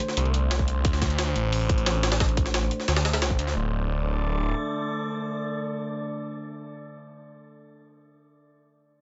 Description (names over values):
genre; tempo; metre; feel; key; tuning
dark technical drum and bass; 177 BPM; 4/4; straight; unclear; A4 = 440 Hz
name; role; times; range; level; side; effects
metallic inharmonic drone; sustained chords; 0.0-7.0 s; D3 to D5; -34 LUFS; equal; chorus, built-in reverb, sidechain pumping
electronic hi-hat; drums; 0.0-3.5 s; none; -39 LUFS; equal; none
jungle sampler-style drum kit; drums; 0.0-3.6 s; hi-hat, snare drum; -31 LUFS; equal; overdrive, high-pass filter on hats, high-pass filter on snare
phased detuned saw bass; bass; 0.2-4.5 s; D1 to D2; -28 LUFS; equal; phaser, tube saturation, sidechain pumping
electronic kick drum; drums; 0.6-3.4 s; none; -27 LUFS; equal; none
room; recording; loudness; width
light reverb, digital ambience; nothing above 7.8 kHz; -26 LUFS; mono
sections
0.0-3.6 A section; 3.6-6.3 B section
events
filter sweep on synth drone 0.0-3.6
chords
0.0 D5